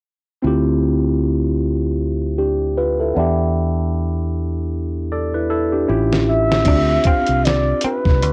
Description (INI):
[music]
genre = R&B, neo-soul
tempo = 77 BPM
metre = 4/4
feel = swing 58% on 16ths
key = D dorian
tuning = A4 = 440 Hz
[part]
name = barky tine electric piano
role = accompaniment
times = 0.4-8.3 s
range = B3 to D5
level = -22 LUFS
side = equal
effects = overdrive, phaser, cassette tape
[part]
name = fingered electric bass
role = bass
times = 0.4-8.3 s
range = A1 to E2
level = -22 LUFS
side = equal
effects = none
[part]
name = dusty soul sampler-style drum kit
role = drums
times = 6.1-8.3 s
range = crash cymbal, hi-hat, kick drum, snare drum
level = -21 LUFS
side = equal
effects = cassette tape
[part]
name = breathy flugelhorn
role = melody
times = 6.3-8.3 s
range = B4 to F5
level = -21 LUFS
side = equal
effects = cassette tape
[part]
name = electric guitar through a small old amp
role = second line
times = 6.7-8.0 s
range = C4 to D4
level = -27 LUFS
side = equal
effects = cassette tape
[sound]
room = little or no reverb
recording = home recording on cassette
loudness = -18 LUFS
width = mono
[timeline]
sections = 0.4-6.7 A section; 6.7-8.3 B section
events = drum fill 5.1-6.7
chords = 0.4 Dm11; 3.2 Em7; 5.9 A7b13; 6.7 Dm7